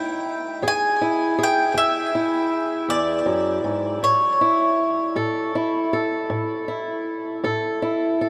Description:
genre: acoustic country blues, solo or duo.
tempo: 53 BPM (dotted quarters).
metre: 12/8.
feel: straight.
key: E major.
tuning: A4 = 440 Hz.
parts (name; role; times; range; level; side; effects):
mandolin; melody; 0.0-5.1 s; C#5 to G#5; -24 LUFS; equal; digital delay.
fingerpicked swing-style acoustic guitar; accompaniment; 0.0-8.3 s; E2 to A4; -25 LUFS; equal; none.
room: wet huge ambient reverb, RT60 7.4 s.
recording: dreamy mix soaked in reverb.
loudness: -22 LUFS.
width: mono.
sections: 0.0-8.3 A section.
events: none.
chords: 0.0 E; 4.0 A.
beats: 0.61 1.75 2.88 | 4.02 5.16 6.30 7.43.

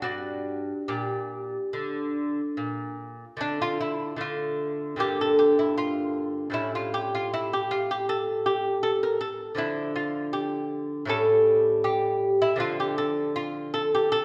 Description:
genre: classical, baroque-style dance for lute.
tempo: 69-81 BPM.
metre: 4/4.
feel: rubato.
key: G minor, D minor from 3.4 s.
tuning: A4 = 440 Hz.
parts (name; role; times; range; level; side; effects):
lute; solo; 0.0-14.2 s; G2 to Bb4; -27 LUFS; equal; none.
room: wet recital hall reverb, RT60 1.6 s.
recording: recorded in a church or concert hall.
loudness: -27 LUFS.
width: mono.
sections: 0.0-3.4 A section; 3.4-14.2 A section.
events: none.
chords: 0.0 Gm; 3.4 Dm; 5.0 Gm; 6.5 A7; 9.6 Dm; 11.1 A7; 12.6 Dm.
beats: | 0.03 0.89 1.74 2.57 | 3.40 4.20 5.00 5.77 | 6.55 7.32 8.08 8.83 | 9.58 10.33 11.09 11.84 | 12.59 13.36 14.12.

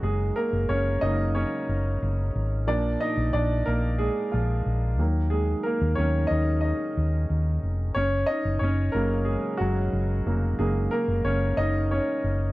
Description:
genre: piano-driven pop.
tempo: 91 BPM.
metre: 4/4.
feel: straight.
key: unclear.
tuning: A4 = 440 Hz.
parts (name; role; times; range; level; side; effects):
clear concert grand piano; accompaniment; 0.0-12.5 s; A#2 to D#5; -26 LUFS; equal; none.
hollow-body short-scale fingered electric bass; bass; 0.0-12.5 s; E#1 to D#2; -25 LUFS; equal; none.
room: little or no reverb.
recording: dry, close 1970s-style studio recording.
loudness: -23 LUFS.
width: side -18 dB against mid.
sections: 0.0-12.5 A section.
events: grand piano solo 0.0-12.5.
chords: 0.0 F#; 2.7 A#; 5.0 D#m.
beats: | 0.03 0.69 1.35 2.01 | 2.67 3.33 4.00 4.66 | 5.32 5.98 6.63 7.29 | 7.95 8.61 9.27 9.93 | 10.59 11.25 11.91.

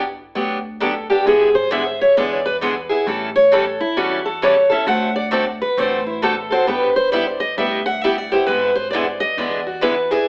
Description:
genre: acoustic string swing (jazz manouche).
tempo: 133 BPM.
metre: 4/4.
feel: swing 63% on 8ths.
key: unclear.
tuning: A4 = 440 Hz.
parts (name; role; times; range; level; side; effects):
picked steel-string acoustic guitar; accompaniment; 0.0-10.3 s; D3 to A4; -22 LUFS; equal; none.
upright bass; bass; 0.0-10.1 s; G1 to E2; -35 LUFS; equal; none.
picked steel-string acoustic guitar; second line; 0.8-10.3 s; E4 to F#5; -20 LUFS; equal; tape echo.
room: wet studio reverb, RT60 0.7 s.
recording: AM radio sound, faint mains hum.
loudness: -18 LUFS.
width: mono.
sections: 0.0-10.3 A section.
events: steel-string acoustic guitar solo 0.0-10.3.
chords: 0.0 Gmaj7; 1.3 E7/G#; 3.1 A7; 4.9 D7; 6.7 G6; 8.5 E7/G#.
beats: 0.36 0.82 | 1.27 1.72 2.17 2.62 | 3.07 3.52 3.98 4.43 | 4.88 5.33 5.78 6.23 | 6.68 7.13 7.58 8.03 | 8.48 8.93 9.38 9.83.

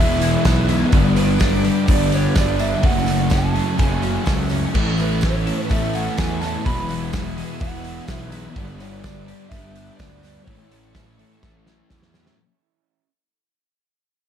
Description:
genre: rock, shoegaze and dream pop.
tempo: 126 BPM.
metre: 4/4.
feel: straight.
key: A major.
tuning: A4 = 440 Hz.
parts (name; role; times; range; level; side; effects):
electric guitar through a small old amp; melody; 0.0-11.9 s; B4 to B5; -28 LUFS; right 4 dB; slapback echo.
string machine, violins; sustained chords; 0.0-12.4 s; A4 to E6; -36 LUFS; equal; none.
twelve-string electric guitar; arpeggios; 0.0-12.4 s; E3 to A4; -33 LUFS; left 11 dB; analog chorus, slapback echo.
crunchy overdriven guitar; riff; 0.0-12.4 s; F#2 to E4; -27 LUFS; right 12 dB; reverse reverb.
crunchy overdriven guitar; riff; 0.0-12.4 s; E2 to A3; -28 LUFS; equal; none.
thick fuzz guitar; riff; 0.0-12.4 s; E2 to A3; -26 LUFS; left 9 dB; distortion, analog chorus.
fuzz picked electric bass; bass; 0.0-12.3 s; E1 to E2; -23 LUFS; equal; overdrive.
loose indie drum kit; drums; 0.2-12.4 s; crash cymbal, hi-hat, kick drum, snare drum; -21 LUFS; equal; none.
tambourine; percussion; 0.2-12.3 s; none; -41 LUFS; right 10 dB; none.
room: little or no reverb.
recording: dark, warm production.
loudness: -17 LUFS.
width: side -9 dB against mid.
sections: 0.0-12.4 A section.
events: fade-out 0.0-12.4; drum fill 11.4-12.4.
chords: 0.0 Eadd9; 0.9 G; 2.8 F#madd9; 4.7 Aadd9; 6.7 Eadd9; 8.6 G; 10.5 A.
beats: 0.45 | 0.93 1.41 1.88 2.36 | 2.84 3.31 3.79 4.27 | 4.75 5.22 5.70 6.18 | 6.66 7.13 7.61 8.09 | 8.56 9.04 9.52 10.00 | 10.47 10.95 11.43 11.91.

